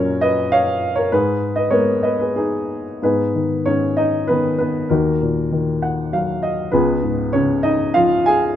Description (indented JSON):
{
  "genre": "classical, lyrical solo piano",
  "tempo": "96 BPM",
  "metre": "3/4",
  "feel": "uneven beats, rubato",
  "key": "G# dorian",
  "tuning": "A4 = 440 Hz",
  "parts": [
    { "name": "warm upright piano", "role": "solo", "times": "0.0-8.6 s", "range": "C#2 to G#5", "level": "-16 LUFS", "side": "equal", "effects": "none" }
  ],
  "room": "light reverb",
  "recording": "close, detailed microphones",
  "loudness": "-16 LUFS",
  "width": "side -10 dB against mid",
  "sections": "0.0-3.0 A section; 3.0-8.6 B section",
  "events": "upright piano fill 5.5-6.7",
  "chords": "0.0 F#; 1.1 G#madd9; 3.0 G#m; 4.9 D#m; 6.7 C#",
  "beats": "0.51 | 1.10 1.71 2.36 | 3.02 3.65 4.28 | 4.90 5.50 6.11 | 6.72 7.33 7.95"
}